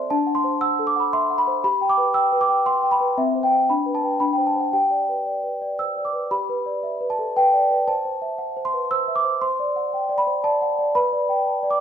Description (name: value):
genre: classical, lullaby for celesta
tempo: 117 BPM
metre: 3/4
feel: straight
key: G major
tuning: A4 = 438 Hz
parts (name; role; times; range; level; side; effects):
- celesta; solo; 0.0-11.8 s; C4 to E6; -19 LUFS; equal; none
room: moderate recital hall reverb, RT60 1.6 s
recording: recorded in a church or concert hall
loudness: -19 LUFS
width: side -8 dB against mid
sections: 0.0-6.3 A section; 6.3-11.8 B section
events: none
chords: 0.1 D7; 1.6 G; 3.2 C; 3.7 G/D; 4.2 D7; 4.7 G; 7.9 Am/C; 9.4 D7/C; 11.0 G/B